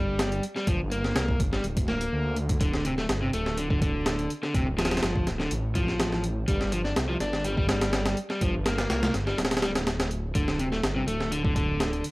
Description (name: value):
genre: breakbeat, breaks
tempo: 124 BPM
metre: 4/4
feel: straight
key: D minor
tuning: A4 = 441 Hz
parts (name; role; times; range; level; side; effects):
- overdriven electric guitar; riff; 0.0-12.0 s; C3 to D4; -29 LUFS; equal; analog delay
- detuned saw bass; bass; 0.0-12.0 s; D1 to D2; -30 LUFS; equal; none
- breakbeat sampler-style drum kit; drums; 0.2-12.1 s; hi-hat, kick drum, snare drum; -28 LUFS; equal; none
room: digital ambience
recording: dry, gritty hardware recording, vinyl crackle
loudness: -24 LUFS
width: side -22 dB against mid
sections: 0.0-12.1 A section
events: none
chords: 0.0 Gm; 2.6 Dm; 6.5 Gm; 10.4 D5